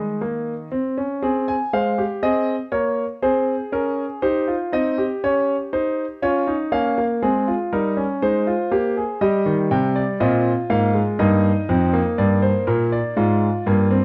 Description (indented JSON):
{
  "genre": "classical, baroque-style 4-part fugue for grand piano",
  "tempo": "60 BPM",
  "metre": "4/4",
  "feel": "straight",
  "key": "Ab major",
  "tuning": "A4 = 440 Hz",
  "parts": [
    { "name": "warm concert grand piano", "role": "solo", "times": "0.0-14.0 s", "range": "F2 to Ab5", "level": "-20 LUFS", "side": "equal", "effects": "none" }
  ],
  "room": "light reverb",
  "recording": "dark, warm production",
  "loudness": "-20 LUFS",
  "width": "mono",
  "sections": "0.0-1.2 A section; 1.2-14.0 B section",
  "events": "none",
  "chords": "0.0 Eb5; 1.2 Ab; 3.2 Ab/C; 5.2 Db; 7.2 Ab; 9.2 Eb; 13.2 Ab"
}